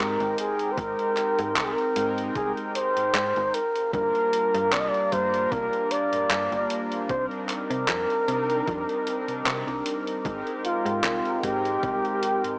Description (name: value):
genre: vaporwave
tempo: 76 BPM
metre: 4/4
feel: swing 54% on 16ths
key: Ab lydian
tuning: A4 = 437 Hz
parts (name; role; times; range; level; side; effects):
- breathy flugelhorn; melody; 0.0-12.6 s; F4 to Eb5; -25 LUFS; equal; vintage 12-bit sampler grit, tape echo
- mellow synth brass; accompaniment; 0.0-12.6 s; G3 to G5; -30 LUFS; equal; wide subtle chorus, tape echo
- warbly tape-like pad; sustained chords; 0.0-12.6 s; G4 to D6; -36 LUFS; equal; chorus, built-in reverb
- slap-like FM bass; bass; 0.0-12.6 s; G1 to C3; -34 LUFS; equal; none
- gated 80s digital drum machine; drums; 0.2-12.6 s; handclaps, hi-hat; -29 LUFS; equal; gated reverb
- electronic kick drum; drums; 0.8-12.0 s; none; -36 LUFS; equal; none
room: light reverb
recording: cassette tape, small speaker sound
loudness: -23 LUFS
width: side -32 dB against mid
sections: 0.0-12.6 A section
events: none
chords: 0.0 Abmaj9; 3.5 Gm7; 7.1 Cm9; 10.3 Abmaj9